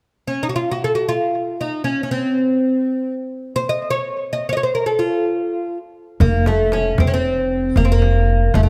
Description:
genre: Persian modal ensemble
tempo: free time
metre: none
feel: none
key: F dastgah homayun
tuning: A4 = 435 Hz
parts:
  - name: oud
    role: melody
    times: 0.3-8.7 s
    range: A3 to Eb5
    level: -21 LUFS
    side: equal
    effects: tape echo
  - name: upright bass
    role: bass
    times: 6.2-8.7 s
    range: F1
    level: -20 LUFS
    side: equal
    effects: none
  - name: frame drum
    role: percussion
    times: 6.2-8.7 s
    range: none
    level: -21 LUFS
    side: equal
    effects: none
room: light reverb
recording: none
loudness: -19 LUFS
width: mono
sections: 0.0-6.2 A section; 6.2-8.7 B section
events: none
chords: none

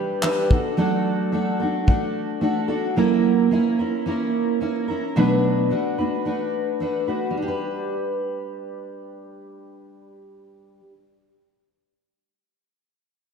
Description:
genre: acoustic pop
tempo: 109 BPM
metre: 4/4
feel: straight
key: G major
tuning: A4 = 440 Hz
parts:
  - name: fingerpicked steel-string acoustic guitar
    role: accompaniment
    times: 0.0-11.0 s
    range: B2 to B4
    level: -21 LUFS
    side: right 1 dB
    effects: analog chorus
  - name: modern studio drum kit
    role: drums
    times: 0.2-2.0 s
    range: handclaps, kick drum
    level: -20 LUFS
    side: left 1 dB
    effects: none
room: wet lush hall reverb, RT60 2.0 s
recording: dreamy mix soaked in reverb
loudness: -20 LUFS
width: side -6 dB against mid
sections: 0.0-7.4 A section; 7.4-9.6 B section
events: none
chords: 0.0 G; 0.5 D/F#; 3.0 F#7; 5.2 Bm7; 7.4 G

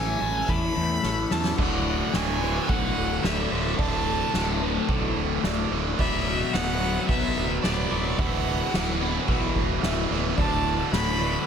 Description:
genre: post-rock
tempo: 109 BPM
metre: 4/4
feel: straight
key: D major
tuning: A4 = 440 Hz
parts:
  - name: clear violin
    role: melody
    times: 0.0-11.5 s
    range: D5 to B5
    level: -30 LUFS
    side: right 2 dB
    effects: tape echo
  - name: glassy FM pad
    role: sustained chords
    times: 0.0-11.5 s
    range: D3 to G#5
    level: -39 LUFS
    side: equal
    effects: none
  - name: clean electric guitar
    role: arpeggios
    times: 0.0-1.6 s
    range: A2 to A4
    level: -38 LUFS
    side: left 3 dB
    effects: tape echo
  - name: overdriven electric guitar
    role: riff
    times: 0.0-11.5 s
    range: D2 to B3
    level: -29 LUFS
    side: left 10 dB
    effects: phaser
  - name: fuzz fingered electric bass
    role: bass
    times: 0.0-11.4 s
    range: D1 to E2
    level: -29 LUFS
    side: right 1 dB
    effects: overdrive
  - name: electric guitar through a small old amp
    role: arpeggios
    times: 0.2-11.5 s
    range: A4 to E5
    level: -39 LUFS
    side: right 8 dB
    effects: none
  - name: soft-mallet drum kit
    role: drums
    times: 0.5-11.3 s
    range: crash cymbal, kick drum, ride cymbal, snare drum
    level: -28 LUFS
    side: right 1 dB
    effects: none
  - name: tight distorted guitar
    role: riff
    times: 1.6-11.5 s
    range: D2 to B3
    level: -30 LUFS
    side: right 15 dB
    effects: distortion
room: little or no reverb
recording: none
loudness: -22 LUFS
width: side -7 dB against mid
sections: 0.0-1.6 A section; 1.6-11.5 B section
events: build-up 0.0-1.6; drum fill 1.0-1.6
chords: 0.0 Amaj7; 1.6 Dadd9; 6.0 Bm/D; 8.2 Esus2/D; 10.4 Dadd9

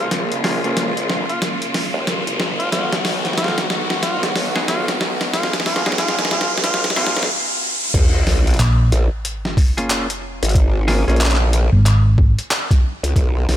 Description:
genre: glitch hop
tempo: 92 BPM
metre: 4/4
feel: swing 62% on 16ths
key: Bb phrygian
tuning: A4 = 440 Hz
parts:
  - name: clear tenor saxophone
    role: melody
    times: 0.0-7.2 s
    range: F4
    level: -26 LUFS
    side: equal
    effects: tape echo
  - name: warm chamber string section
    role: sustained chords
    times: 0.0-7.3 s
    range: Db3 to G#4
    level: -26 LUFS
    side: left 1 dB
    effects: sidechain pumping
  - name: growl bass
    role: bass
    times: 0.0-13.6 s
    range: Ab1 to Eb2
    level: -20 LUFS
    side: equal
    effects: chorus, high-pass filter
  - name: riser and sub drop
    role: sound effects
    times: 0.0-10.6 s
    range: none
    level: -24 LUFS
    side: equal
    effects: none
  - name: boom bap sampler-style drum kit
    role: drums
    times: 0.1-13.6 s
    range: crash cymbal, handclaps, hi-hat, snare drum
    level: -22 LUFS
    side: equal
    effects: none
  - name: semi-hollow electric guitar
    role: stabs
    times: 0.4-11.4 s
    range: Bb3 to Ab4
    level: -26 LUFS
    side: equal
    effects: sidechain pumping, low-pass filter, tape echo
  - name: electronic kick drum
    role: drums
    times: 7.9-13.3 s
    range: none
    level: -14 LUFS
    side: equal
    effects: none
  - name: hollow-body short-scale fingered electric bass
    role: bass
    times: 8.6-12.3 s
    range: Ab1 to Bb1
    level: -12 LUFS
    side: equal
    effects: none
room: light reverb, digital ambience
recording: high-pass filter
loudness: -15 LUFS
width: side -12 dB against mid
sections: 0.0-7.9 A section; 7.9-13.6 B section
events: build-up 0.0-7.9; drum fill 0.0-7.3; riser 0.0-7.9; filter sweep 0.0-7.9; stop 7.3-7.9; drop 7.9-13.6; impact 7.9-10.6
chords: 0.0 Bbm7; 2.7 B6; 7.9 Bbm7

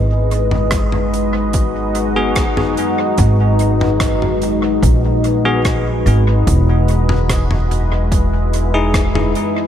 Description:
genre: ambient dub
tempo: 73 BPM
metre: 4/4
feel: straight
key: G# minor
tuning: A4 = 440 Hz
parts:
  - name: deep dark ambient pad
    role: sustained chords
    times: 0.0-9.7 s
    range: G#3 to D#5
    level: -18 LUFS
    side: left 1 dB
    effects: chorus, built-in reverb
  - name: upright bass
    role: bass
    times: 0.0-9.3 s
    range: E1 to A#1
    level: -16 LUFS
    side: equal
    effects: none
  - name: modern studio drum kit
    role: drums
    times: 0.3-9.5 s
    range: hi-hat, rim click, toms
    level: -23 LUFS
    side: left 1 dB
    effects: dub echo
  - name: electronic kick drum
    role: drums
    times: 0.7-9.1 s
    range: none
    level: -18 LUFS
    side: equal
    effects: none
  - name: bell-like tine electric piano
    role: stabs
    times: 2.2-9.3 s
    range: B3 to G#4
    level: -22 LUFS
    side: left 2 dB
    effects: fast stereo tremolo, dub echo
room: light reverb, small room ambience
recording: none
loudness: -13 LUFS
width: side -10 dB against mid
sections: 0.0-9.7 A section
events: none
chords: 0.0 G#m7; 6.5 Emaj7

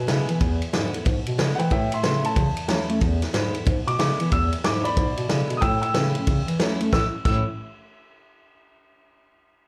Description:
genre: rockabilly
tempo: 184 BPM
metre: 4/4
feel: swing 63% on 8ths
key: A major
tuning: A4 = 440 Hz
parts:
  - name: clear upright piano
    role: melody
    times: 0.0-7.4 s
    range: B4 to E6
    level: -29 LUFS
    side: equal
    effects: plate reverb, slapback echo
  - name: picked steel-string acoustic guitar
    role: accompaniment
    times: 0.0-7.4 s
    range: E2 to E4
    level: -31 LUFS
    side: equal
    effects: slapback echo
  - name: mellow bass clarinet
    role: bass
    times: 0.0-7.4 s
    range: E2 to A3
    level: -28 LUFS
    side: equal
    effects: none
  - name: vintage drum kit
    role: drums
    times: 0.1-7.3 s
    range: crash cymbal, kick drum, ride cymbal, snare drum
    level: -27 LUFS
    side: equal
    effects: none
room: light reverb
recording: live gig heard through the venue's PA, club reverb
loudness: -23 LUFS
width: mono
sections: 0.0-6.9 A section; 6.9-8.2 B section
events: none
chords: 0.0 E7; 1.7 A; 3.0 E7; 5.6 A

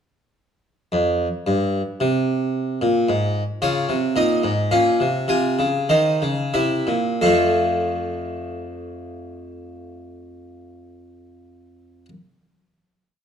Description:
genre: classical, baroque-style 3-part fugue for harpsichord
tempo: 86-113 BPM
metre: 3/4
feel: straight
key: unclear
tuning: A4 = 440 Hz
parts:
  - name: harpsichord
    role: solo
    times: 0.9-12.1 s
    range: F2 to Ab5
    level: -19 LUFS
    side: equal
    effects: none
room: moderate recital hall reverb, RT60 1.3 s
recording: dark, warm production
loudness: -18 LUFS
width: side -8 dB against mid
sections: 0.4-7.2 exposition; 7.2-11.4 final chord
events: slowing down 2.8-7.2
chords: 0.4 N.C.; 3.6 Db; 4.7 Bbm; 5.3 Fm/C; 6.5 C7; 7.2 F

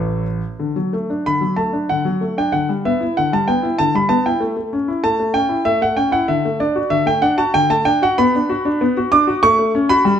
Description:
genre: classical-period piano sonatina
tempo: 96 BPM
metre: 3/4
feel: rubato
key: D major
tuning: A4 = 444 Hz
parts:
  - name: warm concert grand piano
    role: solo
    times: 0.0-10.2 s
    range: A1 to D6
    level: -15 LUFS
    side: equal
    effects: none
room: moderate recital hall reverb, RT60 1.5 s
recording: close, detailed microphones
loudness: -15 LUFS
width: side -8 dB against mid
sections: 0.6-10.2 A section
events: none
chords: 0.0 A; 0.6 D; 2.5 Em/D; 4.4 A; 6.3 D; 8.2 Bm; 9.4 F#m/A

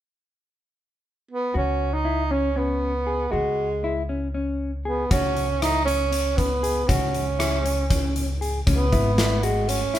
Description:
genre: progressive instrumental, band music in an uneven meter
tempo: 236 BPM (eighths)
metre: 7/8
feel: straight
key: C# minor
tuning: A4 = 441 Hz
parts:
  - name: mellow tenor saxophone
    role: melody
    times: 1.3-10.0 s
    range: G#3 to D#4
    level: -25 LUFS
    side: right 3 dB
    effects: none
  - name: mellow electric guitar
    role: arpeggios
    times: 1.5-10.0 s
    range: C#4 to G#4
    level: -28 LUFS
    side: left 4 dB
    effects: none
  - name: upright bass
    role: bass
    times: 1.6-9.8 s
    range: G#1 to C#2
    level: -26 LUFS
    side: equal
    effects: none
  - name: big rock drum kit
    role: drums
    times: 5.1-10.0 s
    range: hi-hat, kick drum, rim click, snare drum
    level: -26 LUFS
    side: equal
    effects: none
room: light reverb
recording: band playing live in one room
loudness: -21 LUFS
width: side -12 dB against mid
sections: 0.0-1.5 A section; 1.5-8.7 B section; 8.7-10.0 C section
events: none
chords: 0.0 N.C.; 1.5 C#7(no3); 8.7 C#m7

